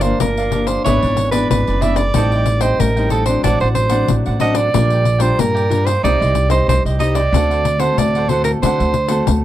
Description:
samba and choro; 93 BPM; 4/4; straight; G minor; A4 = 440 Hz
bright soprano saxophone; melody; 0.0-9.3 s; A4 to E5; -18 LUFS; right 3 dB
cavaquinho; accompaniment; 0.0-9.4 s; D4 to G5; -24 LUFS; right 6 dB
nylon-string guitar; accompaniment; 0.0-9.4 s; G2 to G4; -22 LUFS; left 4 dB
upright bass; bass; 0.0-9.4 s; F#1 to D3; -18 LUFS; right 1 dB
pandeiro; percussion; 0.0-9.4 s; -22 LUFS; left 9 dB
light reverb; dry, close 1970s-style studio recording; -13 LUFS; side -13 dB against mid
0.0-9.4 A section
0.0 Gm7; 0.9 E7/G#; 2.1 Am7b5; 3.4 D7/A; 4.7 Gm7/Bb; 6.0 Cm; 7.3 D7

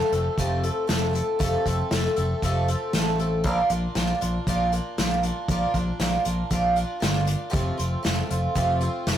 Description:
folk rock and heartland rock; 117 BPM; 4/4; straight; F major; A4 = 440 Hz
picked twelve-string acoustic guitar; accompaniment; 0.0-9.2 s; F2 to A4; -25 LUFS; right 1 dB
fingered electric bass; bass; 0.1-9.2 s; F1 to Bb1; -26 LUFS; equal
unplugged drum kit; drums; 0.1-9.2 s; hi-hat, kick drum, snare drum; -28 LUFS; equal
light reverb; rough rehearsal-room recording, warm saturation; -22 LUFS; side -10 dB against mid
0.0-9.2 A section
0.0 F; 3.4 Bb; 7.5 F

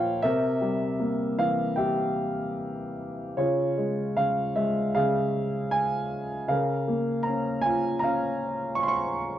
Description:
classical, lyrical solo piano; 78 BPM; 4/4; rubato; A4 = 439 Hz
warm grand piano; solo; 0.0-9.4 s; Bb2 to Db6; -24 LUFS; equal
moderate small room reverb, RT60 0.6 s; worn, warbling old tape, cassette tape, warbly pitch drift; -24 LUFS; side -11 dB against mid
0.0-9.4 A section
0.2 C7; 3.4 Db; 6.5 Bbm/Db

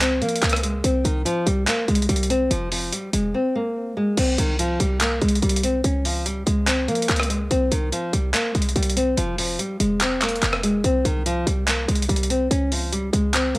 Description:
hip hop, trap; 144 BPM; 4/4; half-time; C phrygian; A4 = 436 Hz
nylon-string guitar; melody; 0.0-13.6 s; Eb3 to Db4; -22 LUFS; equal; cassette tape, analog delay
short 808-style bass; bass; 0.0-13.6 s; F1 to F3; -23 LUFS; equal
breakbeat sampler-style drum kit; drums; 0.0-13.6 s; crash cymbal, handclaps, hi-hat, rim click; -24 LUFS; equal; cassette tape
light reverb; home recording on cassette, faint mains hum; -19 LUFS; side -21 dB against mid
0.0-4.2 A section; 4.2-13.6 A section
silent gap 3.3-4.2
0.0 Db; 0.8 C5; 2.5 Fmadd11; 4.2 C5; 5.8 Db5; 7.5 C5; 9.2 Fmadd11; 10.8 C5; 12.5 N.C.

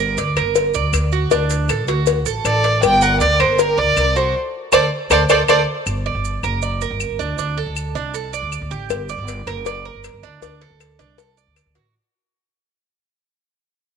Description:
latin, Cuban son and guajira; 158 BPM; 4/4; straight; G harmonic minor; A4 = 442 Hz
Cuban tres; arpeggios; 0.0-11.9 s; D4 to D5; -21 LUFS; right 10 dB
upright bass; bass; 0.0-11.9 s; F#1 to D2; -22 LUFS; equal
cowbell; percussion; 0.2-5.6, 8.9-11.9 s; -22 LUFS; left 14 dB
maracas; percussion; 0.2-11.9 s; -31 LUFS; right 16 dB
claves; percussion; 0.4-11.8 s; -24 LUFS; left 13 dB
rich violin; melody; 2.5-5.6 s; Bb4 to G5; -17 LUFS; equal
clear studio violin section; second line; 2.5-5.6 s; G4 to D5; -26 LUFS; left 2 dB
moderate echo chamber reverb, RT60 2.1 s; 1960s-style stereo with parts hard left and right; -16 LUFS; side -6 dB against mid
0.0-5.9 A section; 5.9-11.9 B section
band accent 4.3-5.9; drum fill 4.9-5.9; fade-out 5.9-11.9
0.0 Gm; 1.3 D; 2.8 Gm; 4.3 D5; 5.9 Gm; 7.4 D5; 8.9 Gm; 10.4 D7

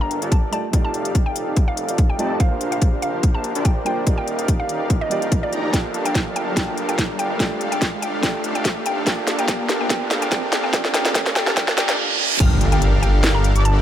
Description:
future bass; 144 BPM; 4/4; swing 54% on 16ths, half-time; G minor; A4 = 442 Hz
mallet-like synth pluck; melody; 0.0-13.8 s; D5 to Bb5; -27 LUFS; left 1 dB; chorus, sidechain pumping, ping-pong delay
dark concert grand piano; accompaniment; 0.0-12.4 s; A3 to A5; -30 LUFS; right 4 dB; sidechain pumping, digital delay
soft supersaw; riff; 0.0-13.8 s; D4 to Bb5; -26 LUFS; equal; sidechain pumping, low-pass filter
wide detuned saw bass; bass; 0.0-13.8 s; Eb1 to F2; -25 LUFS; equal; chorus, sidechain pumping, high-pass filter
riser, reverse cymbal and impact; sound effects; 1.8-13.8 s; -27 LUFS; right 1 dB
trap drum kit; drums; 0.1-13.7 s; crash cymbal, hi-hat, snare drum; -23 LUFS; equal
electronic kick drum; drums; 0.3-12.5 s; -19 LUFS; equal
wide unison pluck; arpeggios; 12.4-13.8 s; D6 to F6; -32 LUFS; right 1 dB; sidechain pumping
light reverb, digital ambience; high-pass filter; -17 LUFS; side -10 dB against mid
0.0-12.4 A section; 12.4-13.8 B section
build-up 0.0-12.4; filter sweep on supersaw synth 0.0-12.4; filter sweep 0.0-12.4; riser 1.8-12.0; drum fill 5.7-12.0; reverse cymbal 11.6-12.4; drop 12.4-13.8; impact 12.4-13.8
0.0 Gm9; 0.5 F13; 2.4 Bb69; 4.1 Ebmaj9; 5.7 Gm9; 7.2 F69; 9.1 Bb6; 10.7 Ebmaj9; 12.4 Gm9

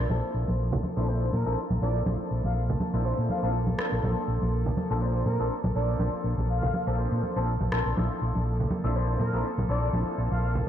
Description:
filtered disco house; 122 BPM; 4/4; swing 55% on 16ths; A4 = 440 Hz
clear concert grand piano; accompaniment; 0.0-10.7 s; F3 to C5; -33 LUFS; left 2 dB; phaser, low-pass filter
warm studio string section; sustained chords; 0.0-10.7 s; Bb3 to D5; -36 LUFS; equal; low-pass filter
hollow-body short-scale fingered electric bass; bass; 0.0-10.6 s; Bb1 to Bb2; -27 LUFS; equal; tube saturation, low-pass filter
congas and egg shaker; percussion; 0.1-10.7 s; -33 LUFS; right 1 dB; low-pass filter on perc
analog synth brass; melody; 1.3-10.5 s; Bb4 to F5; -35 LUFS; equal; chorus, low-pass filter, diffuse ambient delay
electronic rim click; drums; 3.8-3.9, 7.7-7.8 s; -35 LUFS; equal
moderate lush hall reverb, RT60 2.2 s; dreamy mix soaked in reverb; -25 LUFS; side -10 dB against mid
0.0-10.7 A section
filter sweep 0.0-10.7
0.1 Bbmaj9#11; 3.8 Bbmaj9; 8.0 Bbmaj9#11

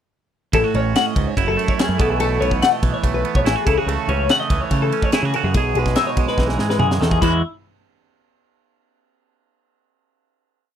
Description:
math rock and midwest emo; 144 BPM; 4/4; straight; E major; A4 = 440 Hz
twangy electric guitar; accompaniment; 0.5-7.4 s; E2 to G#4; -23 LUFS; right 11 dB; wide subtle chorus
twelve-string electric guitar; arpeggios; 0.5-7.4 s; E4 to F#5; -21 LUFS; left 6 dB; phaser
growling picked electric bass; bass; 0.5-7.4 s; F#1 to C#3; -22 LUFS; equal; overdrive
crisp fusion drum kit; drums; 0.5-7.3 s; crash cymbal, kick drum, ride cymbal, snare drum, toms; -22 LUFS; equal
little or no reverb; dry, close 1970s-style studio recording; -16 LUFS; side -9 dB against mid
0.5-7.2 A section; 7.2-8.9 final chord
drum fill 6.4-7.2
0.5 A6; 1.4 F#m7; 2.0 B7sus4; 3.7 A6/C#; 5.5 Emaj7/B; 7.2 N.C.

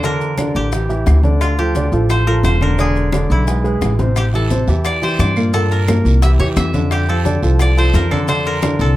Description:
Afro-Cuban jazz; 175 BPM; 4/4; straight; F major; A4 = 436 Hz
koto; melody; 0.0-9.0 s; E4 to E5; -22 LUFS; equal; plate reverb
dark grand piano; accompaniment; 0.0-8.9 s; Bb2 to D5; -19 LUFS; right 1 dB
upright bass; bass; 0.0-9.0 s; E1 to G2; -15 LUFS; equal
bongos; percussion; 0.0-8.8 s; -29 LUFS; left 6 dB
congas; percussion; 0.0-9.0 s; -26 LUFS; left 2 dB
maracas; percussion; 0.0-9.0 s; -35 LUFS; left 5 dB
claves; percussion; 0.4-8.8 s; -33 LUFS; right 4 dB
guiro; percussion; 4.2-9.0 s; -35 LUFS; right 5 dB
light reverb; -13 LUFS; side -15 dB against mid
0.0-9.0 A section
0.0 Gm69; 0.7 A5; 1.4 Dmadd9; 2.8 E7; 4.2 Am7; 5.5 Gm; 6.2 C; 6.9 F6

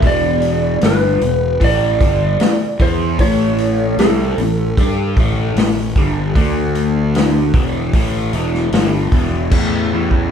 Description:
blues rock power trio and southern rock; 76 BPM; 4/4; straight; A mixolydian; A4 = 444 Hz
lightly driven lead guitar; melody; 0.0-5.5 s; A4 to D5; -18 LUFS; right 2 dB
overdriven semi-hollow guitar; riff; 0.0-10.3 s; E2 to G4; -19 LUFS; left 1 dB; phaser
fuzz fingered electric bass; bass; 0.0-10.3 s; E1 to G2; -19 LUFS; equal; overdrive
vintage drum kit; drums; 0.0-10.3 s; crash cymbal, hi-hat, kick drum, snare drum; -17 LUFS; equal
overdriven tonewheel organ; sustained chords; 9.5-10.3 s; B3 to A4; -27 LUFS; right 3 dB; chorus vibrato, slow rotary speaker
moderate large studio reverb, RT60 0.8 s; band playing live in one room; -13 LUFS; side -8 dB against mid
0.0-9.5 A section
0.0 E5; 3.2 A7; 6.4 D5; 7.5 E5; 9.5 A

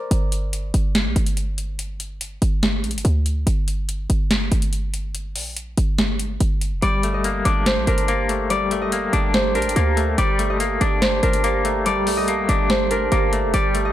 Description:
hip hop, trap; 143 BPM; 4/4; half-time; G minor; A4 = 440 Hz
concert harp; melody; 0.0-1.6, 6.8-13.9 s; Bb4 to Eb5; -24 LUFS; left 1 dB; low-pass filter
short 808-style bass; bass; 0.1-13.9 s; F1 to D2; -22 LUFS; equal
booming analog drum machine; drums; 0.1-13.8 s; hi-hat, snare drum; -24 LUFS; equal
semi-hollow electric guitar; accompaniment; 6.8-13.9 s; G3 to D4; -23 LUFS; left 4 dB; tremolo, low-pass filter
deep dark ambient pad; sustained chords; 7.8-13.9 s; G4 to Bb5; -27 LUFS; right 5 dB; chorus, built-in reverb
digital ambience; -18 LUFS; side -12 dB against mid
0.0-13.9 A section
filter sweep 0.0-6.8
0.1 Gm; 6.8 Gmadd9

